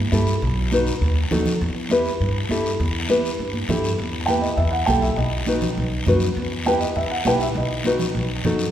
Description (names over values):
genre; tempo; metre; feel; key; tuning
latin, cumbia; 202 BPM; 4/4; straight; E harmonic minor; A4 = 440 Hz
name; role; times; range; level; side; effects
upright bass; bass; 0.0-8.7 s; B1 to G2; -23 LUFS; equal; none
nylon-string guitar; accompaniment; 0.1-8.7 s; D#4 to B4; -24 LUFS; left 2 dB; none
congas; percussion; 0.1-8.6 s; none; -28 LUFS; right 4 dB; none
guiro; percussion; 0.1-8.7 s; none; -31 LUFS; left 3 dB; none
felt-muted upright piano; melody; 4.3-8.6 s; D#5 to G5; -24 LUFS; right 2 dB; none
room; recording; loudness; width
wet concert hall reverb, RT60 1.8 s; recorded in a church or concert hall; -19 LUFS; side -10 dB against mid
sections
0.0-4.0 A section; 4.0-8.7 B section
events
none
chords
0.4 B7; 1.6 Em; 5.2 B; 6.4 Em; 7.6 B7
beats
0.13 | 0.43 0.72 1.02 1.32 | 1.61 1.91 2.21 2.50 | 2.80 3.10 3.40 3.69 | 3.99 4.29 4.58 4.88 | 5.18 5.47 5.77 6.07 | 6.36 6.66 6.96 7.25 | 7.55 7.85 8.15 8.44